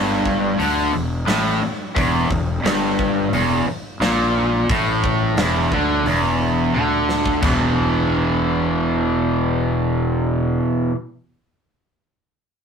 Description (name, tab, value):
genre	blues rock power trio and southern rock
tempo	88 BPM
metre	4/4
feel	straight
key	E minor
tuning	A4 = 441 Hz
part	cranked stack guitar	riff	0.0-11.0 s	E2 to E3	-18 LUFS	equal	overdrive
part	fuzz fingered electric bass	bass	0.0-10.6 s	E1 to D2	-24 LUFS	equal	overdrive
part	huge arena drum kit	drums	0.3-7.6 s	hi-hat, kick drum, snare drum, splash cymbal, toms	-25 LUFS	equal	none
room	moderate small room ambience, RT60 0.5 s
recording	rough rehearsal-room recording, tube saturation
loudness	-17 LUFS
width	side -6 dB against mid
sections	0.0-7.4 A section; 7.4-10.2 B section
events	drum fill 6.7-7.4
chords	0.0 Em; 7.4 E5